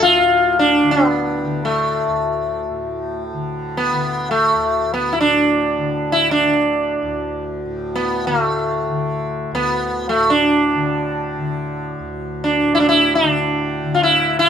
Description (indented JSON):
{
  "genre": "indian classical, Hindustani",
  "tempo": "free time",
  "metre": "none",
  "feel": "none",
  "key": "D raga shivaranjani",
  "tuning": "A4 = 441 Hz",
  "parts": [
    { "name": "sitar", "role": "melody", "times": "0.0-14.5 s", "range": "A3 to F4", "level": "-16 LUFS", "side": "equal", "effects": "none" },
    { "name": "tanpura", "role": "drone", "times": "0.0-14.5 s", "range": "D2 to D3", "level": "-25 LUFS", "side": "left 1 dB", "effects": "none" }
  ],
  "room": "light reverb",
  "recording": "minimal, uncompressed stereo recording",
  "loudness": "-16 LUFS",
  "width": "side -8 dB against mid",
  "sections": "0.0-14.5 A section",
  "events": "none",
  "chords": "none",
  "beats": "free time"
}